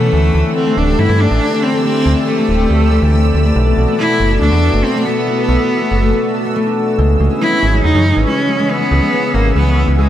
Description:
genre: IDM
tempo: 140 BPM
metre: 4/4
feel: straight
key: unclear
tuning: A4 = 442 Hz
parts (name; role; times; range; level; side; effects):
- rich cello; melody; 0.0-10.1 s; G#3 to E4; -17 LUFS; equal; digital delay
- warm analog pad; sustained chords; 0.0-10.1 s; B2 to F#5; -20 LUFS; equal; chorus, vintage 12-bit sampler grit
- concert harp; arpeggios; 0.0-10.1 s; E3 to A4; -17 LUFS; left 3 dB; digital delay
- metallic FM bass; bass; 0.0-10.1 s; D1 to G2; -13 LUFS; right 1 dB; none
- bubbling stepped-filter texture; texture; 0.0-10.1 s; E3 to E6; -25 LUFS; equal; chorus, built-in reverb
room: light reverb, small room ambience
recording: none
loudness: -11 LUFS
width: side -11 dB against mid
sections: 0.0-10.1 A section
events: none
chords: 0.1 D7sus4; 3.6 Bm7; 7.0 C#m7

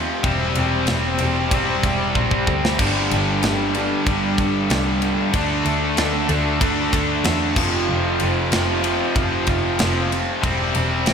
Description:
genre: hard rock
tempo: 94 BPM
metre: 4/4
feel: straight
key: unclear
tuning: A4 = 440 Hz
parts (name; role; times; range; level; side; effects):
- analog string pad; sustained chords; 0.0-11.1 s; G3 to G5; -31 LUFS; equal; none
- tight distorted guitar; riff; 0.0-11.1 s; F2 to D4; -24 LUFS; equal; distortion, slapback echo
- distorted electric guitar; riff; 0.2-11.1 s; F2 to D4; -25 LUFS; right 8 dB; distortion, slapback echo
- tight distorted guitar; riff; 0.2-11.1 s; F2 to D4; -25 LUFS; left 9 dB; distortion, slapback echo
- clear double bass; bass; 0.2-11.1 s; E1 to E2; -25 LUFS; equal; none
- tight metal drum kit; drums; 0.2-11.1 s; crash cymbal, kick drum, ride cymbal, snare drum; -24 LUFS; equal; none
room: moderate concert hall reverb, RT60 2.1 s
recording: big arena sound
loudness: -17 LUFS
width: side -6 dB against mid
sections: 0.0-11.1 A section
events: drum fill 2.2-2.8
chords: 0.2 C/E; 2.8 G5; 5.3 D5; 7.6 F5; 10.4 C/E

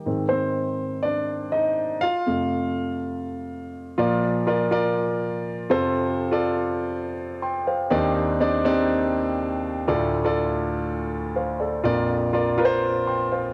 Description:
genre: pop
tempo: 122 BPM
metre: 4/4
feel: straight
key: Bb major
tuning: A4 = 443 Hz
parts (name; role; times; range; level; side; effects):
- dark grand piano; solo; 0.0-13.5 s; Bb1 to C6; -24 LUFS; equal; none
room: wet spring reverb, RT60 1.6 s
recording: home recording on cassette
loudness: -24 LUFS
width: mono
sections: 0.0-4.0 A section; 4.0-13.5 B section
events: grand piano solo 0.0-4.0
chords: 0.1 Ab; 2.0 F; 4.0 Bb; 5.7 F; 7.9 Cmadd9/Eb; 9.9 Dm; 11.8 Bb

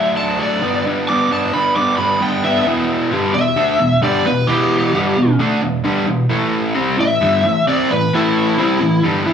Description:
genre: rock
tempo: 132 BPM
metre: 4/4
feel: straight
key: E minor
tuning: A4 = 440 Hz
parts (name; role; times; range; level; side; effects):
- lead guitar through a small cranked amp; melody; 0.0-9.0 s; E4 to D6; -17 LUFS; left 1 dB; overdrive
- overdriven electric guitar; riff; 0.0-9.3 s; E2 to E4; -16 LUFS; right 1 dB; none
room: moderate large studio reverb, RT60 1.1 s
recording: band playing live in one room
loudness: -14 LUFS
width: side -8 dB against mid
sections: 0.0-2.6 A section; 2.6-9.3 B section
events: none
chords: 0.0 D; 0.6 G; 2.6 Em; 6.3 A5

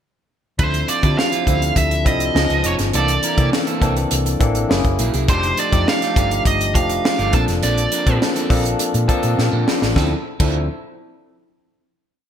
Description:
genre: polished 1980s jazz-funk pop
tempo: 102 BPM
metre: 4/4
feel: straight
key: D minor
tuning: A4 = 440 Hz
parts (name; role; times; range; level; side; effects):
- nasal lead guitar with a parked wah; melody; 0.6-8.2 s; C5 to A5; -21 LUFS; right 4 dB; overdrive, ping-pong delay
- barky tine electric piano; accompaniment; 0.6-10.7 s; E3 to A5; -22 LUFS; left 3 dB; wide subtle chorus
- electric guitar at the edge of break-up; riff; 0.6-10.6 s; F3 to Eb5; -28 LUFS; right 6 dB; lush chorus
- hollow-body short-scale fingered electric bass; bass; 0.6-10.7 s; E#1 to D3; -21 LUFS; equal; none
- crisp fusion drum kit; drums; 0.6-10.5 s; crash cymbal, hi-hat, kick drum, snare drum; -20 LUFS; equal; gated reverb
room: light reverb, studio reverb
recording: bright 1980s-style digital production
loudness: -15 LUFS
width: side -9 dB against mid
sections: 0.6-10.0 verse; 10.0-12.3 final chord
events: tine electric piano fill 8.8-10.0; drum fill 9.4-10.0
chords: 0.6 Dm9; 2.4 C#9; 2.9 C13; 4.7 F#9; 5.3 F13; 7.3 Bbmaj9; 10.0 Dm9

